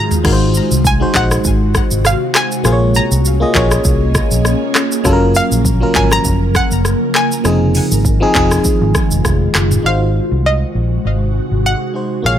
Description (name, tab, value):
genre	afrobeats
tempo	100 BPM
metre	4/4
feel	swing 55% on 16ths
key	Ab mixolydian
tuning	A4 = 440 Hz
part	analog pluck	melody	0.0-12.4 s	Eb5 to Bb5	-19 LUFS	equal	chorus, ping-pong delay
part	FM electric piano	accompaniment	0.0-12.4 s	F3 to Eb5	-18 LUFS	left 1 dB	chorus
part	ethereal airy pad	sustained chords	0.0-12.4 s	C3 to Bb4	-20 LUFS	equal	ensemble chorus, built-in reverb, phaser
part	afro-pop drum kit	drums	0.1-9.8 s	crash cymbal, handclaps, hi-hat, kick drum, rim click, shaker, toms	-16 LUFS	equal	none
part	vintage muted fingered electric bass	bass	0.2-12.4 s	F1 to C2	-15 LUFS	equal	none
room	little or no reverb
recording	none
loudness	-11 LUFS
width	side -10 dB against mid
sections	0.0-9.8 A section; 9.8-12.4 B section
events	drum fill 0.0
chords	0.2 Ab7; 2.6 Bbm7; 5.0 Gbmaj7; 7.4 Fm7; 9.8 Ab7